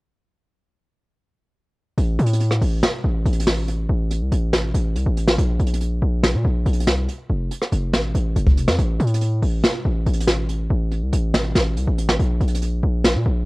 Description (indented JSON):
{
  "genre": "hip hop, trap",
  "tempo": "141 BPM",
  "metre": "4/4",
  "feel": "half-time",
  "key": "unclear",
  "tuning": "A4 = 440 Hz",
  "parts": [
    { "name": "distorted 808-style bass", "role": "bass", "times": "2.0-13.5 s", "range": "F1 to Bb2", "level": "-19 LUFS", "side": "equal", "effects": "distortion" },
    { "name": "jazz brush drum kit", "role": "drums", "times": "2.0-13.1 s", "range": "hi-hat, kick drum, rim click, snare drum", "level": "-21 LUFS", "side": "equal", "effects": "none" }
  ],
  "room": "little or no reverb",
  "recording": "home recording on cassette",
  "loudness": "-18 LUFS",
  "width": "side -23 dB against mid",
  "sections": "2.0-13.5 A section",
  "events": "none",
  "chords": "none",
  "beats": "| 1.98 2.40 2.83 3.25 | 3.68 4.11 4.53 4.96 | 5.38 5.81 6.23 6.66 | 7.08 7.51 7.93 8.36 | 8.79 9.21 9.64 10.06 | 10.49 10.91 11.34 11.77 | 12.19 12.62 13.04"
}